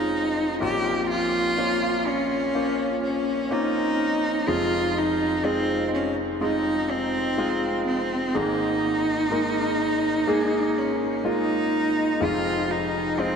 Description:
pop; 62 BPM; 4/4; straight; F minor; A4 = 440 Hz
rich cello; melody; 0.0-13.4 s; C4 to G4; -24 LUFS; equal; diffuse ambient delay
warm concert grand piano; accompaniment; 0.0-13.4 s; F1 to C5; -25 LUFS; equal; lush chorus
wet cathedral reverb, RT60 5.5 s; dreamy mix soaked in reverb; -22 LUFS; side -6 dB against mid
0.0-13.4 A section
0.0 Fm7; 0.6 Bbmadd9; 4.5 Fm7; 8.4 Absus2; 12.2 Fm7

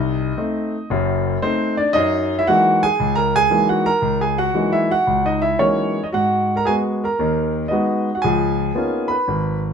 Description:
solo jazz; 115 BPM; 4/4; swing 68% on 8ths, rubato; F# mixolydian; A4 = 441 Hz
clear concert grand piano; solo; 0.0-9.7 s; Gb1 to B5; -16 LUFS; equal
moderate large studio reverb, RT60 0.9 s; minimal, uncompressed stereo recording; -16 LUFS; side -6 dB against mid
0.0-9.7 A section
0.0 Cdim7; 1.9 F#13; 6.1 G#m7; 8.2 C#13

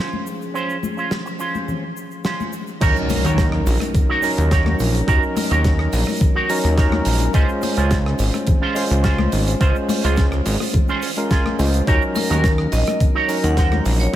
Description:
nu-disco, nu disco; 106 BPM; 4/4; straight; Eb dorian; A4 = 440 Hz
overdriven tine electric piano; accompaniment; 0.0-14.2 s; F3 to C5; -24 LUFS; equal; sidechain pumping, tape echo
electric guitar with an envelope filter; riff; 0.0-14.2 s; Db4 to Db5; -24 LUFS; right 3 dB; analog chorus, tape echo
congas and tube shaker; percussion; 0.1-14.2 s; -28 LUFS; left 5 dB
damped 70s drum kit; drums; 1.1-14.1 s; crash cymbal, hi-hat, rim click, snare drum; -28 LUFS; right 2 dB
fat analog bass; bass; 2.8-14.1 s; Ab1 to Eb2; -18 LUFS; equal; sidechain pumping
electronic kick drum; drums; 2.8-13.7 s; -18 LUFS; equal
impact; sound effects; 2.8-5.1 s; -27 LUFS; equal
vibraphone with hard mallets; melody; 12.2-14.2 s; Bb4 to Gb5; -26 LUFS; left 1 dB; ping-pong delay
light reverb, small room ambience; -16 LUFS; side -12 dB against mid
0.0-2.8 A section; 2.8-14.2 B section
drop 2.8-14.2; impact 2.8-5.1
0.0 Dbmaj7; 2.8 Ebm7; 7.3 Dbmaj7; 11.9 Ebm7

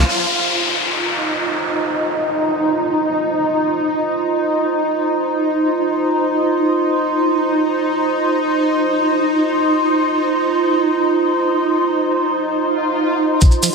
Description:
psychedelic trance; free time; A4 = 439 Hz
swarming drone; sustained chords; 0.0-13.7 s; C4 to Eb4; -18 LUFS; equal; built-in reverb, sidechain pumping
liquid acid bass; riff; 0.0-0.1, 13.4-13.7 s; F3; -26 LUFS; moving between left 5 dB and right 3 dB; phaser, auto-pan, sidechain pumping, ping-pong delay
warbly tape-like pad; texture; 0.0-13.7 s; F4 to C6; -19 LUFS; right 2 dB; chorus, built-in reverb, sidechain pumping
downlifter, swell and riser; sound effects; 0.1-3.4, 12.7-13.7 s; -22 LUFS; left 2 dB
electronic hi-hat; drums; 13.4-13.7 s; -25 LUFS; equal; high-pass filter on snare, high-pass filter on hats
electronic kick drum; drums; 13.4-13.5 s; -11 LUFS; equal
maracas; percussion; 13.4-13.7 s; -18 LUFS; right 2 dB
moderate plate reverb, RT60 2.2 s; -15 LUFS; side -4 dB against mid
0.1-13.4 A section
swell 12.7-13.4
0.1 F5

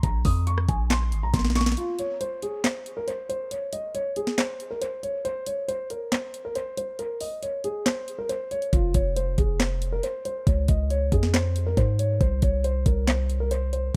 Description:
hip hop, trap; 138 BPM; 4/4; half-time; A4 = 440 Hz
dark concert grand piano; melody; 0.0-13.9 s; F4 to Eb6; -32 LUFS; equal; low-pass filter
warm 808-style bass; bass; 0.0-1.8, 8.7-13.9 s; F1 to Ab2; -26 LUFS; equal
trap drum kit; drums; 0.0-13.8 s; handclaps, hi-hat, kick drum, rim click, snare drum; -28 LUFS; equal
little or no reverb; echo-heavy mix; -26 LUFS; mono
0.0-1.8 A section; 1.8-14.0 B section
drum fill 1.3-1.8; break 1.8-8.7
0.0 Bb5; 1.8 N.C.; 8.7 F5; 10.5 Db; 12.2 N.C.

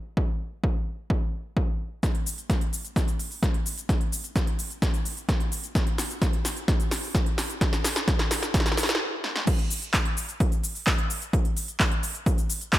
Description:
EDM; 129 BPM; 4/4; straight
electronic kick drum; drums; 0.2-12.8 s; -24 LUFS; equal; overdrive
big-room dance drum kit; drums; 2.0-12.8 s; crash cymbal, handclaps, hi-hat, shaker, snare drum; -28 LUFS; equal; overdrive, high-pass filter on snare, low-pass filter on snare, high-pass filter on hats, low-pass filter on hats, high-pass filter on perc, low-pass filter on perc, high-pass filter on cymbals, low-pass filter on cymbals, high-pass filter on room, low-pass filter on room
light reverb; -24 LUFS; side -15 dB against mid
0.0-2.0 A section; 2.0-9.5 B section; 9.5-12.8 C section
build-up 2.0-9.5; drum fill 2.0-9.0, 9.2; stop 9.0-9.5; drop 9.5-12.8

